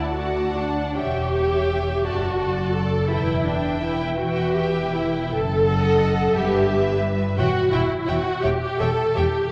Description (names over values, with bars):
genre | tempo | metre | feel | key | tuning
classical, slow romantic movement for string orchestra | 47-59 BPM (dotted quarters) | 6/8 | rubato | unclear | A4 = 440 Hz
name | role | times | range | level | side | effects
rich studio violin section | melody | 0.0-9.3 s | E5 to A5 | -35 LUFS | equal | none
warm studio violin section | second line | 0.0-9.2 s | A4 to F#5 | -32 LUFS | equal | none
rich studio viola section | accompaniment | 0.0-9.5 s | D4 to A4 | -25 LUFS | equal | none
warm studio cello section | bass | 0.0-9.2 s | D2 to G2 | -30 LUFS | equal | none
warm studio double bass section | bass | 0.0-9.2 s | E1 to D2 | -30 LUFS | equal | none
room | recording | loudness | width
wet scoring stage reverb, RT60 1.7 s | worn, warbling old tape, cassette tape, warbly pitch drift | -22 LUFS | mono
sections
0.0-9.5 A section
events
none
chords
0.0 D; 1.0 C#dim/E; 2.1 D/F#; 3.1 Em; 5.3 D#dim/F#; 6.4 Em/G; 7.4 C#dim/E (rootless)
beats
| 0.96 2.05 | 3.11 4.18 | 5.32 6.36 | 7.39 8.45